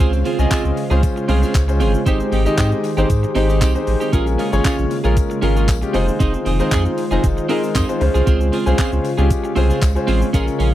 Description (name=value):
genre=dance-pop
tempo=116 BPM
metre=4/4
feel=straight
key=unclear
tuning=A4 = 440 Hz
part: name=warm concert grand piano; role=accompaniment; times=0.0-10.7 s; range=Ab3 to C6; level=-21 LUFS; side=left 3 dB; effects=sidechain pumping
part: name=airy breathy pad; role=sustained chords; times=0.0-10.7 s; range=Db3 to C5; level=-25 LUFS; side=right 1 dB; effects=chorus, sidechain pumping
part: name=twelve-string electric guitar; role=riff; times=0.0-10.7 s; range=C4 to Ab4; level=-23 LUFS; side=right 6 dB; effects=lush chorus
part: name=warm sub bass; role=bass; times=0.0-10.7 s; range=F1 to Ab2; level=-18 LUFS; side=equal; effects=sidechain pumping
part: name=clean 12-bit digital drum machine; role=drums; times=0.0-10.7 s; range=handclaps, hi-hat, kick drum, shaker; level=-20 LUFS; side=equal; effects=none
part: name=tambourine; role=percussion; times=0.1-10.7 s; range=none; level=-41 LUFS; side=left 14 dB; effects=none
room=little or no reverb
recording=dry, close 1970s-style studio recording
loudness=-15 LUFS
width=side -13 dB against mid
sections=0.0-10.7 A section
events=grand piano fill 7.2-8.3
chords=0.0 Dbmaj7; 2.1 Abmaj7; 4.1 Bbm7; 5.9 Fm7; 8.0 Dbmaj7